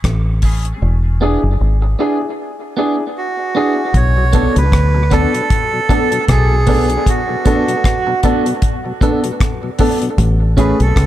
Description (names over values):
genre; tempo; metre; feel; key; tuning
dub reggae; 77 BPM; 4/4; swing 57% on 16ths; B dorian; A4 = 440 Hz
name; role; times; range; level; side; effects
deep dub fingered electric bass; bass; 0.0-11.1 s; E1 to D2; -14 LUFS; equal; none
deep reggae drum kit; drums; 0.0-11.1 s; hi-hat, kick drum, rim click; -16 LUFS; equal; none
clean electric guitar; accompaniment; 0.4-10.8 s; B3 to A4; -22 LUFS; right 6 dB; high-pass filter, dub echo
warm upright piano; stabs; 0.4-10.8 s; A3 to A4; -20 LUFS; left 2 dB; high-pass filter, dub echo
melodica; melody; 3.2-11.1 s; F#4 to C#5; -18 LUFS; right 4 dB; dub echo
mellow tonewheel organ; accompaniment; 4.2-10.1 s; B2 to D4; -26 LUFS; left 3 dB; slow rotary speaker, dub echo
room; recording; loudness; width
light reverb, small room ambience; echo-heavy mix; -12 LUFS; side -13 dB against mid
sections
0.0-3.9 A section; 3.9-11.1 B section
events
part muted 0.8-3.9; break 2.4-3.9, 7.1-10.2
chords
0.0 Amaj7; 0.8 E7; 3.9 Bm7; 10.2 Amaj7